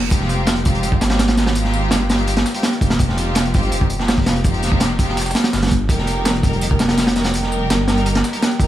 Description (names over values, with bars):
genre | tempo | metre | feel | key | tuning
drum and bass, jungle | 166 BPM | 4/4 | straight | F minor | A4 = 436 Hz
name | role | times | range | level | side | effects
dark detuned saw bass | bass | 0.0-8.7 s | F1 to Ab1 | -21 LUFS | equal | tube saturation
warm symphonic string section | sustained chords | 0.1-8.7 s | G3 to Bb4 | -23 LUFS | equal | none
breakbeat sampler-style drum kit | drums | 0.1-8.7 s | hi-hat, snare drum, tambourine | -30 LUFS | equal | high-pass filter on perc, high-pass filter on snare, high-pass filter on hats
crunchy breakbeat drum kit | drums | 0.1-8.7 s | hi-hat, kick drum, snare drum | -17 LUFS | equal | none
room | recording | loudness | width
small room ambience | studio ambience | -15 LUFS | side -13 dB against mid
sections
0.0-8.7 A section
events
none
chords
0.1 Fm9; 5.9 Eb/F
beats
| 0.11 0.47 0.83 1.20 | 1.56 1.92 2.28 2.64 | 3.00 3.36 3.73 4.09 | 4.45 4.81 5.17 5.53 | 5.89 6.26 6.62 6.98 | 7.34 7.70 8.06 8.42